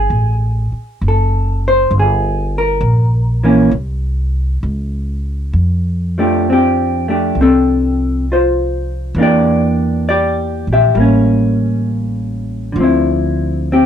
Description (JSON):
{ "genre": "jazz ballad", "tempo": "66 BPM", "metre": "4/4", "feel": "swing 69% on 8ths", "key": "F major", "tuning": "A4 = 441 Hz", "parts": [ { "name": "vintage hollow-body jazz guitar", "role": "accompaniment", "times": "0.0-13.9 s", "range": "D3 to E5", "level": "-14 LUFS", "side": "equal", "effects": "none" }, { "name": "upright bass", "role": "bass", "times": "0.0-13.9 s", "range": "Gb1 to F2", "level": "-16 LUFS", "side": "equal", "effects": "none" } ], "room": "light reverb", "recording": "dry, close 1970s-style studio recording", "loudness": "-12 LUFS", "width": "side -9 dB against mid", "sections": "0.0-5.5 A section; 5.5-13.9 B section", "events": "none", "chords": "0.1 Gbmadd9; 1.9 Gm; 3.7 N.C.; 5.5 F69; 9.2 Em7b5; 11.0 A7b9; 12.8 Dm9" }